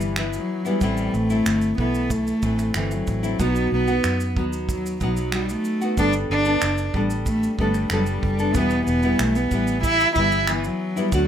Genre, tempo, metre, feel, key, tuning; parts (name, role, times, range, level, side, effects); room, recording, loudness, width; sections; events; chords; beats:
acoustic pop; 93 BPM; 4/4; straight; E minor; A4 = 440 Hz
warm cello; melody; 0.0-11.3 s; E3 to E4; -23 LUFS; right 1 dB
nylon-string guitar; accompaniment; 0.0-11.3 s; E2 to A4; -25 LUFS; left 1 dB
vintage muted fingered electric bass; bass; 0.0-11.3 s; E1 to F#2; -26 LUFS; equal
soft brush drum kit; drums; 0.0-11.3 s; finger snaps, kick drum, shaker; -28 LUFS; right 2 dB
light reverb; minimal, uncompressed stereo recording; -19 LUFS; side -9 dB against mid
0.0-11.3 A section
0.0 Em; 0.8 Am; 3.4 B; 6.0 Gadd9; 8.6 Em
0.17 | 0.81 1.46 2.10 2.75 | 3.40 4.04 4.68 5.33 | 5.97 6.62 7.26 7.91 | 8.55 9.20 9.84 10.48 | 11.12